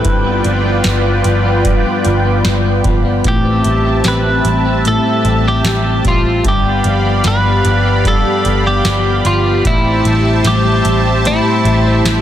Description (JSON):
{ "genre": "dream pop", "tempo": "75 BPM", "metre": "4/4", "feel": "straight", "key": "A minor", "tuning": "A4 = 439 Hz", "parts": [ { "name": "twelve-string electric guitar", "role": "melody", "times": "0.0-12.2 s", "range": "E4 to B4", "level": "-18 LUFS", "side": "right 1 dB", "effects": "tape echo" }, { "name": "clean electric guitar", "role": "arpeggios", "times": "0.0-12.2 s", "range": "G2 to C4", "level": "-18 LUFS", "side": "left 4 dB", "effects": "wide subtle chorus, tape echo" }, { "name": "booming analog drum machine", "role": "drums", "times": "0.0-12.2 s", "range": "hi-hat, kick drum, snare drum", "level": "-18 LUFS", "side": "equal", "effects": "none" }, { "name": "lush unison pad", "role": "sustained chords", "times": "0.1-12.2 s", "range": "C4 to B5", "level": "-17 LUFS", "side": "right 1 dB", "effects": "chorus" }, { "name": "vintage muted picked electric bass", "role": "bass", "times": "0.1-12.2 s", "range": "G1 to A1", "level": "-16 LUFS", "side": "right 1 dB", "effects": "none" } ], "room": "light reverb", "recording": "dense, heavily limited modern master", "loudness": "-11 LUFS", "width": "side -11 dB against mid", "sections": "0.0-12.2 A section", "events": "none", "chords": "0.0 G7; 3.2 Am7; 6.4 G7; 9.6 Am7" }